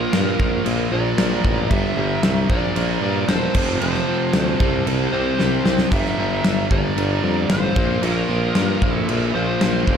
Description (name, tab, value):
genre	hard rock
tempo	114 BPM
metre	4/4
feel	straight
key	unclear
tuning	A4 = 441 Hz
part	dark smooth lead guitar	melody	0.0-10.0 s	Bb4 to E5	-26 LUFS	right 3 dB	overdrive, slapback echo
part	octave-fuzz lead guitar	second line	0.0-10.0 s	F4 to Bb4	-32 LUFS	right 2 dB	distortion
part	overdriven electric guitar	riff	0.0-10.0 s	F2 to C4	-26 LUFS	right 10 dB	none
part	overdriven electric guitar	riff	0.0-9.9 s	F2 to C4	-29 LUFS	equal	none
part	overdriven semi-hollow guitar	riff	0.0-10.0 s	F2 to C4	-25 LUFS	left 11 dB	none
part	clear tuba	bass	0.0-10.0 s	E1 to G2	-24 LUFS	equal	none
part	big rock drum kit	drums	0.1-10.0 s	crash cymbal, kick drum, snare drum	-22 LUFS	left 1 dB	none
room	studio reverb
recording	none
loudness	-17 LUFS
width	side -7 dB against mid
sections	0.0-10.0 A section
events	drum fill 5.4-5.9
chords	0.0 Bb; 1.7 Gm; 2.5 Bb; 3.5 F; 4.6 C5; 5.9 Gm; 7.8 Bb5